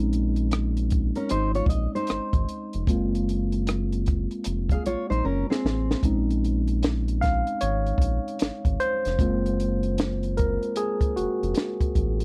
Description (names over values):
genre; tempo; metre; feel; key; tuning
R&B, neo-soul; 76 BPM; 4/4; swing 63% on 16ths; Bb minor; A4 = 440 Hz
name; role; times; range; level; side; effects
tine electric piano; accompaniment; 0.0-12.2 s; Ab3 to F5; -30 LUFS; equal; none
round analog bass; bass; 0.0-12.2 s; F1 to Bb1; -29 LUFS; equal; none
compact cocktail drum kit; drums; 0.1-12.2 s; hi-hat, kick drum, rim click, snare drum; -28 LUFS; equal; none
nylon-string guitar; second line; 1.2-6.0 s; C4 to F5; -30 LUFS; equal; none
room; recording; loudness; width
little or no reverb; dry, close 1970s-style studio recording; -25 LUFS; mono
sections
0.0-12.2 A section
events
tine electric piano solo 0.0-12.2; drum fill 5.2-6.0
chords
0.0 Bbm11; 2.9 Gbmaj9#11; 6.0 Bbm11; 9.2 Gbmaj9#11